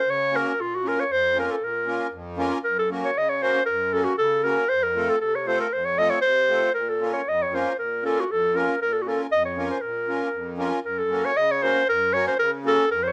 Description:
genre	balkan folk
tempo	117 BPM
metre	2/4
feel	straight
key	unclear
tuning	A4 = 440 Hz
part	warm clarinet	melody	0.0-13.1 s	F4 to Eb5	-24 LUFS	equal	none
part	accordion	accompaniment	0.1-13.1 s	F2 to Bb4	-31 LUFS	equal	light tremolo tuning
room	light reverb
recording	none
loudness	-23 LUFS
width	mono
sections	0.0-2.6 A section; 2.6-10.9 B section; 10.9-13.1 B section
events	none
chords	0.0 Gb; 0.6 Bbm; 2.6 Gb; 4.7 F; 6.7 Bbm; 10.9 Gb

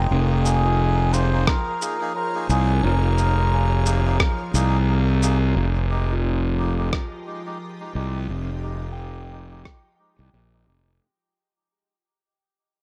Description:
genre	ambient dub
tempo	88 BPM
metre	4/4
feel	swing 57% on 16ths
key	F minor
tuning	A4 = 440 Hz
part	soft additive organ-like pad	sustained chords	0.0-11.0 s	F3 to Eb5	-37 LUFS	equal	ensemble chorus, built-in reverb
part	soft synth bell	arpeggios	0.0-11.1 s	F4 to G5	-39 LUFS	equal	chorus, tremolo, low-pass filter, dub echo
part	fuzz fingered electric bass	bass	0.0-11.0 s	F1 to C2	-22 LUFS	equal	overdrive
part	trumpet with cup mute	melody	0.4-4.9 s	Ab4 to C5	-30 LUFS	equal	dub echo
part	melodica	stabs	0.5-10.9 s	Ab3 to Ab4	-35 LUFS	equal	low-pass filter, dub echo
part	electronic shaker and rim click	drums	0.5-9.8 s	none	-29 LUFS	equal	small room reverb
part	electronic kick drum	drums	1.5-9.8 s	none	-26 LUFS	equal	overdrive, small room reverb
room	light reverb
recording	none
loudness	-21 LUFS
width	mono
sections	0.0-5.6 A section; 5.6-11.0 B section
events	fade-out 5.6-11.0; filter sweep on melodica 5.6-11.0; filter sweep on synth bell 5.6-11.0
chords	0.0 Absus2/F; 5.6 Fm9

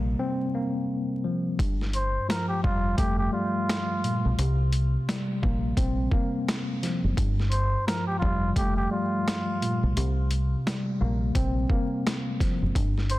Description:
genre	hip hop, boom-bap hip-hop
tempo	86 BPM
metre	4/4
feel	swing 61% on 16ths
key	unclear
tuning	A4 = 440 Hz
part	mellow tine electric piano	accompaniment	0.0-13.2 s	G2 to C4	-28 LUFS	left 1 dB	medium stereo tremolo, cassette tape
part	deep dub fingered electric bass	bass	0.0-13.2 s	F1 to C2	-26 LUFS	equal	none
part	boom bap sampler-style drum kit	drums	1.6-13.2 s	hi-hat, kick drum, snare drum	-29 LUFS	equal	none
part	trumpet with cup mute	melody	1.9-13.2 s	F4 to C5	-31 LUFS	equal	tape echo
room	light reverb, digital ambience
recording	dense, heavily limited modern master, vinyl crackle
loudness	-24 LUFS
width	side -17 dB against mid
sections	0.0-1.6 A section; 1.6-13.2 A section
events	drums muted 0.2-1.6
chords	0.0 C7sus4; 1.6 Gm9; 4.4 C7sus4; 7.2 Gm9; 10.0 C7sus4

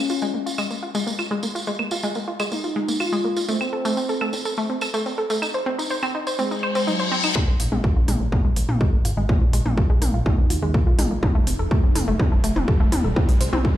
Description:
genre	melodic techno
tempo	124 BPM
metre	4/4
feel	straight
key	Bb minor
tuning	A4 = 440 Hz
part	expressive synth lead	melody	0.0-12.6 s	Gb3 to F4	-29 LUFS	left 1 dB	lush chorus, sidechain pumping, ping-pong delay
part	analog pluck	arpeggios	0.0-13.7 s	Ab3 to C5	-26 LUFS	equal	chorus, sidechain pumping, digital delay
part	tambourine	percussion	0.1-7.3 s	none	-31 LUFS	right 3 dB	none
part	techno drum kit	drums	0.6-13.6 s	claves, hi-hat, toms	-27 LUFS	equal	sidechain pumping on perc, low-pass filter on perc, sidechain pumping on toms, low-pass filter on toms, sidechain pumping on hats, low-pass filter on hats, low-pass filter on room
part	reverse cymbal and riser	sound effects	6.6-13.8 s	none	-30 LUFS	left 3 dB	none
part	electronic kick drum	drums	7.4-13.7 s	none	-19 LUFS	equal	none
part	fat analog bass	bass	7.5-13.6 s	Eb1 to Eb2	-24 LUFS	equal	sidechain pumping
room	light reverb, digital ambience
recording	played on a big sound system in a bare room, large studio reverb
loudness	-19 LUFS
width	side -13 dB against mid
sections	0.0-7.4 A section; 7.4-13.8 B section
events	filter sweep on synth arpeggio sound 0.0-7.4; reverse cymbal 6.6-7.4; build-up 7.4-13.8; drum fill 7.4-13.8; riser 7.4-13.8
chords	0.0 Bbm7; 3.5 Am; 5.4 Cdim; 7.4 Bbm7; 11.2 F; 13.2 Cm

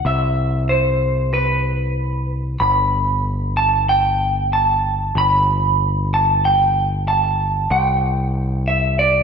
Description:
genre	post-rock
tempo	94 BPM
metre	4/4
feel	straight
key	G major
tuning	A4 = 440 Hz
part	electric guitar through a small old amp	melody	0.0-9.2 s	B4 to B5	-17 LUFS	right 1 dB	spring reverb, slapback echo
part	growling picked electric bass	bass	0.1-9.2 s	G1 to C2	-20 LUFS	equal	overdrive
room	moderate lush hall reverb, RT60 1.8 s, digital ambience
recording	big arena sound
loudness	-16 LUFS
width	side -6 dB against mid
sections	0.0-9.2 A section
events	none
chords	0.0 Cmaj7; 2.6 Gadd9; 7.7 C5

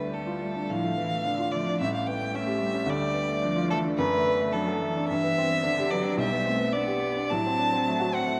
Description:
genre	quick classical-period movement for piano trio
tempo	110 BPM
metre	4/4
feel	rubato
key	G major from 4.0 s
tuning	A4 = 440 Hz
part	rich violin	melody	0.0-8.4 s	A4 to A5	-30 LUFS	equal	none
part	warm cello	second line	0.0-8.4 s	D3 to B3	-35 LUFS	equal	none
part	warm baby grand piano	accompaniment	0.0-8.4 s	A1 to A4	-31 LUFS	equal	none
room	wet scoring stage reverb, RT60 1.7 s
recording	none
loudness	-27 LUFS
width	mono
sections	0.0-8.4 A section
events	none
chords	0.0 Dm; 1.8 A7; 2.9 Dm; 4.0 D/F#; 5.1 G; 6.2 G/B; 7.3 F#dim/A

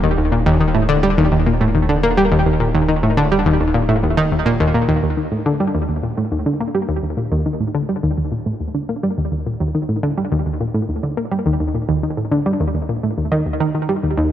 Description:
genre	ambient, sequencer-driven space music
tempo	105 BPM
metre	4/4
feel	straight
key	Eb lydian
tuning	A4 = 440 Hz
part	analog pluck	riff	0.0-14.3 s	Eb2 to Bb3	-16 LUFS	equal	chorus, tape echo
part	warm sub bass	bass	0.0-5.0 s	Eb1	-23 LUFS	equal	none
room	moderate plate reverb, RT60 3.7 s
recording	none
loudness	-16 LUFS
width	side -11 dB against mid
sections	0.0-5.0 A section; 5.0-14.3 B section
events	none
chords	0.0 Eb5; 5.0 Eb

